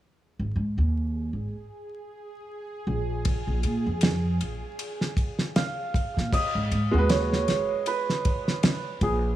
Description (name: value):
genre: trip hop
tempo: 78 BPM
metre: 4/4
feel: swing 58% on 16ths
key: G# dorian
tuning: A4 = 440 Hz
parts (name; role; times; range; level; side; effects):
- bowed-like drone; texture; 1.2-6.3 s; G#4; -39 LUFS; right 2 dB; built-in reverb
- upright bass; bass; 0.4-9.4 s; G#1 to A#2; -26 LUFS; equal; none
- damped 70s drum kit; drums; 3.2-9.2 s; crash cymbal, kick drum, ride cymbal, snare drum; -26 LUFS; equal; studio reverb
- santur; melody; 5.6-9.4 s; G#4 to E#5; -28 LUFS; right 3 dB; tape echo
- bright upright piano; accompaniment; 6.9-9.4 s; G#3 to B4; -29 LUFS; right 1 dB; harmonic tremolo, tape echo
room: small room ambience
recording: vinyl crackle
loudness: -24 LUFS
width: side -13 dB against mid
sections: 0.2-6.3 A section; 6.3-9.4 B section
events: none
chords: 0.2 G#5; 3.3 A#5; 6.3 G#m7